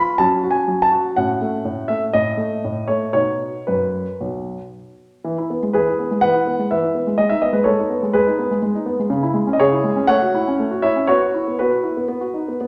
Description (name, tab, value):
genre	classical-period piano sonatina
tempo	122 BPM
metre	4/4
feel	rubato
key	E major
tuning	A4 = 440 Hz
part	warm concert grand piano	solo	0.0-12.7 s	B1 to B5	-19 LUFS	equal	none
room	wet recital hall reverb, RT60 1.4 s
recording	none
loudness	-19 LUFS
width	mono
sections	0.0-5.2 A section; 5.2-12.7 B section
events	none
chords	0.2 F#5; 1.2 F#m/A; 3.2 B; 5.2 E; 7.2 G#m; 9.1 C#m; 10.1 F#m7/A; 11.1 Bsus4; 12.1 B